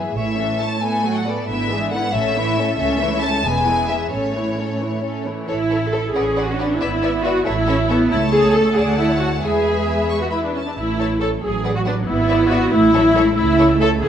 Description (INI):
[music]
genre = quick classical-period movement for string orchestra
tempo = 91 BPM (dotted quarters)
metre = 6/8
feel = straight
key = A major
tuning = A4 = 440 Hz
[part]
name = warm studio violin section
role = second line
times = 0.0-13.9 s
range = C#4 to F#5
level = -26 LUFS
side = left 2 dB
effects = none
[part]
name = rich studio viola section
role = accompaniment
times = 0.0-14.1 s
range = D3 to A4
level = -19 LUFS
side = equal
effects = none
[part]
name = rich studio cello section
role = bass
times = 0.0-14.1 s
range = C#2 to E4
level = -24 LUFS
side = right 2 dB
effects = none
[part]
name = rich studio violin section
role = melody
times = 0.2-13.9 s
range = C#5 to C#6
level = -25 LUFS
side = left 4 dB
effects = none
[part]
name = clear studio double bass section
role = bass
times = 0.2-14.1 s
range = E1 to E2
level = -25 LUFS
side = right 3 dB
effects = none
[sound]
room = wet scoring stage reverb, RT60 1.9 s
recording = dark, warm production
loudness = -16 LUFS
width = side -9 dB against mid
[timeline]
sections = 0.0-5.5 A section; 5.5-14.1 A section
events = none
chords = 0.2 A; 0.8 B5/A; 1.5 E7/G#; 2.1 A; 2.8 A/C#; 3.5 E; 4.1 A; 6.1 Bm7/A; 6.8 E7/G#; 7.5 A; 8.1 A/C#; 8.8 D; 9.4 E; 10.8 A; 11.4 Bm7/A; 12.1 E7/G#; 12.7 A; 13.4 A/C#